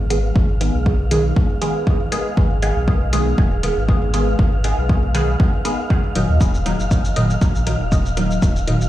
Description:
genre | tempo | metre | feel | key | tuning
dub techno | 119 BPM | 4/4 | swing 54% on 16ths | unclear | A4 = 440 Hz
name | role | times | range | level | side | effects
pure sine sub bass | bass | 0.0-8.9 s | D#1 to D#2 | -20 LUFS | equal | tube saturation, sidechain pumping
wind-like tuned noise texture | texture | 0.0-8.9 s | E#5 | -30 LUFS | equal | built-in reverb, sidechain pumping
filtered dub chord stab | stabs | 0.1-8.9 s | A#2 to G#4 | -21 LUFS | equal | phaser, cassette tape, sidechain pumping, dub echo
electronic hi-hat and shaker | drums | 0.1-8.9 s | none | -30 LUFS | left 2 dB | small room reverb
electronic kick drum | drums | 0.4-8.5 s | none | -17 LUFS | equal | overdrive, small room reverb
room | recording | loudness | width
little or no reverb | played on a big sound system in a bare room, stone room reverb | -15 LUFS | side -14 dB against mid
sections
0.0-8.9 A section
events
none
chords
0.0 D#m

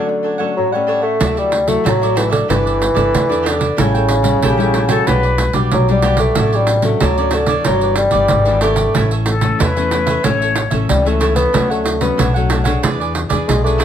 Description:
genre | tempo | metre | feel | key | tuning
samba and choro | 93 BPM | 4/4 | straight | D major | A4 = 440 Hz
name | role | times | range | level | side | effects
mellow bassoon | melody | 0.0-13.8 s | C#3 to B3 | -16 LUFS | equal | none
cavaquinho | accompaniment | 0.0-13.8 s | D4 to G5 | -22 LUFS | right 4 dB | none
nylon-string guitar | accompaniment | 0.0-13.8 s | G2 to A4 | -23 LUFS | left 7 dB | none
upright bass | bass | 1.2-13.8 s | G1 to E2 | -18 LUFS | equal | none
pandeiro | percussion | 1.2-13.8 s | none | -20 LUFS | right 5 dB | none
silver concert flute | second line | 4.4-10.7 s | G4 to C#5 | -19 LUFS | left 4 dB | none
room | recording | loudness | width
moderate studio reverb, RT60 0.6 s | none | -13 LUFS | side -9 dB against mid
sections
0.0-1.2 A section; 1.2-13.8 B section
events
break 0.0-1.2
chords
0.0 Dmaj7; 1.2 Dadd9; 2.5 Gadd9; 3.8 A7; 5.1 Gmaj7/B; 6.4 Dmaj7/A; 7.7 G6; 8.9 A; 11.5 Dmaj7; 12.8 E7

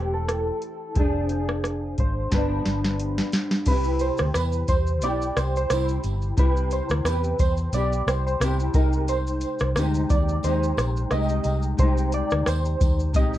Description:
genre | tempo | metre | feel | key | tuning
indie pop, bedroom pop | 89 BPM | 4/4 | swing 55% on 16ths | C major | A4 = 440 Hz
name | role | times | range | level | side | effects
soft electric-piano-like synth keys | melody | 0.0-13.4 s | G4 to Eb5 | -28 LUFS | right 2 dB | tremolo, ensemble chorus, analog delay
flamenco guitar | accompaniment | 0.0-13.4 s | G2 to Ab4 | -29 LUFS | left 2 dB | ensemble chorus, vibrato effect
vintage muted fingered electric bass | bass | 0.0-13.4 s | E1 to E2 | -25 LUFS | equal | none
soft vintage rhythm box | drums | 0.3-13.4 s | crash cymbal, hi-hat, kick drum, rim click, shaker, snare drum | -24 LUFS | equal | overdrive, vintage 12-bit sampler grit
tambourine | percussion | 3.7-13.3 s | none | -46 LUFS | right 4 dB | none
room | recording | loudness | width
light reverb | worn, warbling old tape, cassette tape, warbly pitch drift | -21 LUFS | side -13 dB against mid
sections
0.0-3.7 A section; 3.7-13.4 B section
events
drum fill 2.3-3.7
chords
0.0 C6/E; 1.0 Fm6; 2.3 G7; 3.7 Cmaj7; 8.7 Abmaj7

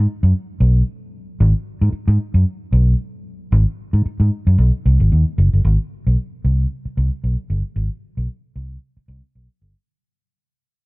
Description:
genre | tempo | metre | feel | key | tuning
funk | 113 BPM | 4/4 | swing 56% on 16ths | unclear | A4 = 440 Hz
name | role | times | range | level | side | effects
vintage muted fingered electric bass | solo | 0.0-9.7 s | Gb1 to Ab2 | -15 LUFS | equal | none
room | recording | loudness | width
little or no reverb | dry, close 1970s-style studio recording | -16 LUFS | side -25 dB against mid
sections
0.0-5.6 A section; 5.6-9.9 B section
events
fade-out 5.6-9.9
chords
none

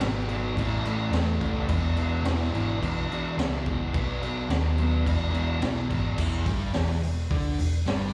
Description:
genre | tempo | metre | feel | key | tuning
garage rock duo or trio | 107 BPM | 4/4 | straight | unclear | A4 = 440 Hz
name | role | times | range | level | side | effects
fuzz guitar | riff | 0.0-8.1 s | E2 to D4 | -32 LUFS | equal | distortion, slapback echo
hollow-body short-scale picked electric bass | bass | 0.0-8.1 s | E1 to E2 | -30 LUFS | equal | none
raw garage drum kit | drums | 0.0-8.0 s | crash cymbal, hi-hat, kick drum, snare drum | -32 LUFS | equal | none
room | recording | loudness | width
studio reverb | live gig heard through the venue's PA, club ambience | -27 LUFS | mono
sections
0.0-6.2 A section; 6.2-8.1 B section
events
none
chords
0.0 B5; 0.6 A; 1.7 E5; 3.9 B; 5.1 E; 6.2 E5

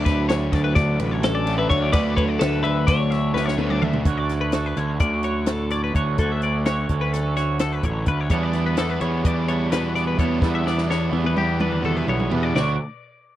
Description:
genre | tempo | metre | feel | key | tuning
math rock and midwest emo | 255 BPM (eighths) | 9/8 | straight | D major | A4 = 440 Hz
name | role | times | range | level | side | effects
twelve-string electric guitar | arpeggios | 0.0-12.8 s | G4 to E5 | -27 LUFS | left 6 dB | spring reverb
crunchy overdriven guitar | riff | 0.0-4.0, 8.3-12.7 s | D3 to E4 | -27 LUFS | right 2 dB | none
fuzz picked electric bass | bass | 0.0-12.8 s | A1 to E2 | -23 LUFS | equal | overdrive
compact cocktail drum kit | drums | 0.1-12.7 s | hi-hat, kick drum, ride cymbal, snare drum, toms | -24 LUFS | equal | none
twelve-string electric guitar | melody | 1.2-3.8 s | A4 to D5 | -25 LUFS | left 3 dB | slapback echo
twangy electric guitar | accompaniment | 4.1-12.8 s | D2 to F#4 | -28 LUFS | right 7 dB | none
room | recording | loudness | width
little or no reverb | dry, close 1970s-style studio recording | -19 LUFS | side -13 dB against mid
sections
0.0-4.1 A section; 4.1-12.5 B section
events
drum fill 3.4-4.1, 10.4-12.5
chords
0.0 Dmaj7; 8.3 Em7; 12.5 Dmaj7

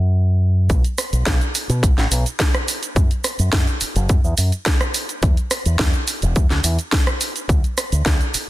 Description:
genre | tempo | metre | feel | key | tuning
nu-disco, nu disco | 106 BPM | 4/4 | straight | unclear | A4 = 440 Hz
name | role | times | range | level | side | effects
fingered electric bass with an envelope filter | bass | 0.0-8.4 s | E1 to B2 | -18 LUFS | equal | none
electronic kick drum | drums | 0.7-8.2 s | none | -18 LUFS | equal | none
house drum kit | drums | 0.7-8.5 s | hi-hat, rim click, shaker, snare drum | -22 LUFS | right 1 dB | low-pass filter on hats, low-pass filter on perc, low-pass filter on snare, low-pass filter on room
room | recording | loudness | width
little or no reverb | dense, heavily limited modern master | -16 LUFS | side -16 dB against mid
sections
0.7-8.5 A section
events
drop 0.7-8.5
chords
none

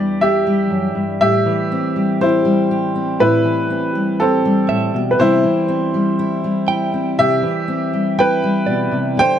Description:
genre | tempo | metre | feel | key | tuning
acoustic folk-pop ballad | 60 BPM | 4/4 | straight | unclear | A4 = 442 Hz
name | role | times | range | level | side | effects
clear upright piano | melody | 0.0-9.4 s | C4 to G5 | -17 LUFS | equal | none
fingerpicked steel-string acoustic guitar | accompaniment | 0.0-9.4 s | E2 to G4 | -18 LUFS | equal | none
direct-recorded clean electric guitar | arpeggios | 4.7-9.4 s | D5 to G5 | -24 LUFS | right 6 dB | harmonic tremolo
room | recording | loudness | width
light reverb | close, detailed microphones | -14 LUFS | side -9 dB against mid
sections
0.0-9.4 A section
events
none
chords
0.0 Em7; 1.2 Am7; 5.2 Cmaj7

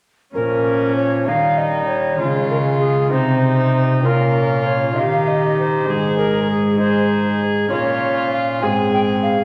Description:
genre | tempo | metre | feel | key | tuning
classical, renaissance-style consort dance | 65 BPM (dotted quarters) | 6/8 | straight | Bb dorian | A4 = 437 Hz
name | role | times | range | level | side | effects
alto recorder | melody | 0.3-9.4 s | Ab4 to Ab5 | -24 LUFS | equal | none
clear trombone | accompaniment | 0.3-9.4 s | F3 to Eb4 | -27 LUFS | equal | none
concert harp | accompaniment | 0.3-9.4 s | Ab2 to Db5 | -24 LUFS | equal | none
rich viola | second line | 0.4-9.4 s | Db4 to Ab4 | -24 LUFS | equal | none
rich cello | bass | 0.4-9.4 s | Ab2 to Eb3 | -25 LUFS | equal | none
room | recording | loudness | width
wet recital hall reverb, RT60 1.5 s | none | -18 LUFS | mono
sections
0.3-9.4 A section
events
none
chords
0.3 Bbm; 1.3 Eb; 2.2 Db; 3.1 Cm; 4.0 Bbm; 5.0 Eb; 5.9 Ab; 7.7 Bbm; 8.6 Ab

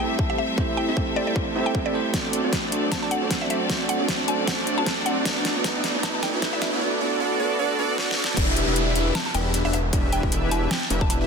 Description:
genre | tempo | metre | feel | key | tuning
future bass | 154 BPM | 4/4 | swing 56% on 16ths, half-time | E minor | A4 = 441 Hz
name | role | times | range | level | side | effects
mallet-like synth pluck | melody | 0.0-6.7, 9.2-11.2 s | D5 to A5 | -31 LUFS | left 1 dB | chorus, sidechain pumping, dub echo
bell-like tine electric piano | accompaniment | 0.0-8.4 s | A3 to C5 | -30 LUFS | right 4 dB | sidechain pumping, ping-pong delay
bright studio string section | sustained chords | 0.0-6.8 s | E3 to E5 | -32 LUFS | left 3 dB | sidechain pumping
big bright polysynth | riff | 0.0-11.3 s | B3 to E5 | -26 LUFS | right 1 dB | chorus, cassette tape, sidechain pumping, ping-pong delay
riser and downlifter | sound effects | 0.1-11.3 s | none | -31 LUFS | right 1 dB | none
electronic kick drum | drums | 0.2-11.1 s | none | -27 LUFS | equal | overdrive
dubstep drum kit | drums | 2.1-11.2 s | crash cymbal, hi-hat, snare drum | -28 LUFS | left 1 dB | overdrive
wide detuned saw bass | bass | 8.4-11.3 s | E1 | -25 LUFS | equal | chorus, tube saturation, sidechain pumping
room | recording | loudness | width
light reverb, digital ambience | dense, heavily limited modern master, high-pass filter | -21 LUFS | side -5 dB against mid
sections
0.0-8.4 A section; 8.4-11.3 B section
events
build-up 0.0-8.4; filter sweep on analog polysynth 0.0-8.4; filter sweep 0.0-8.4; riser 0.1-6.8; drum fill 2.1-6.8, 8.0-8.4; drop 8.4-11.3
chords
0.0 Am7; 2.1 D7; 5.3 G6; 8.4 Em7

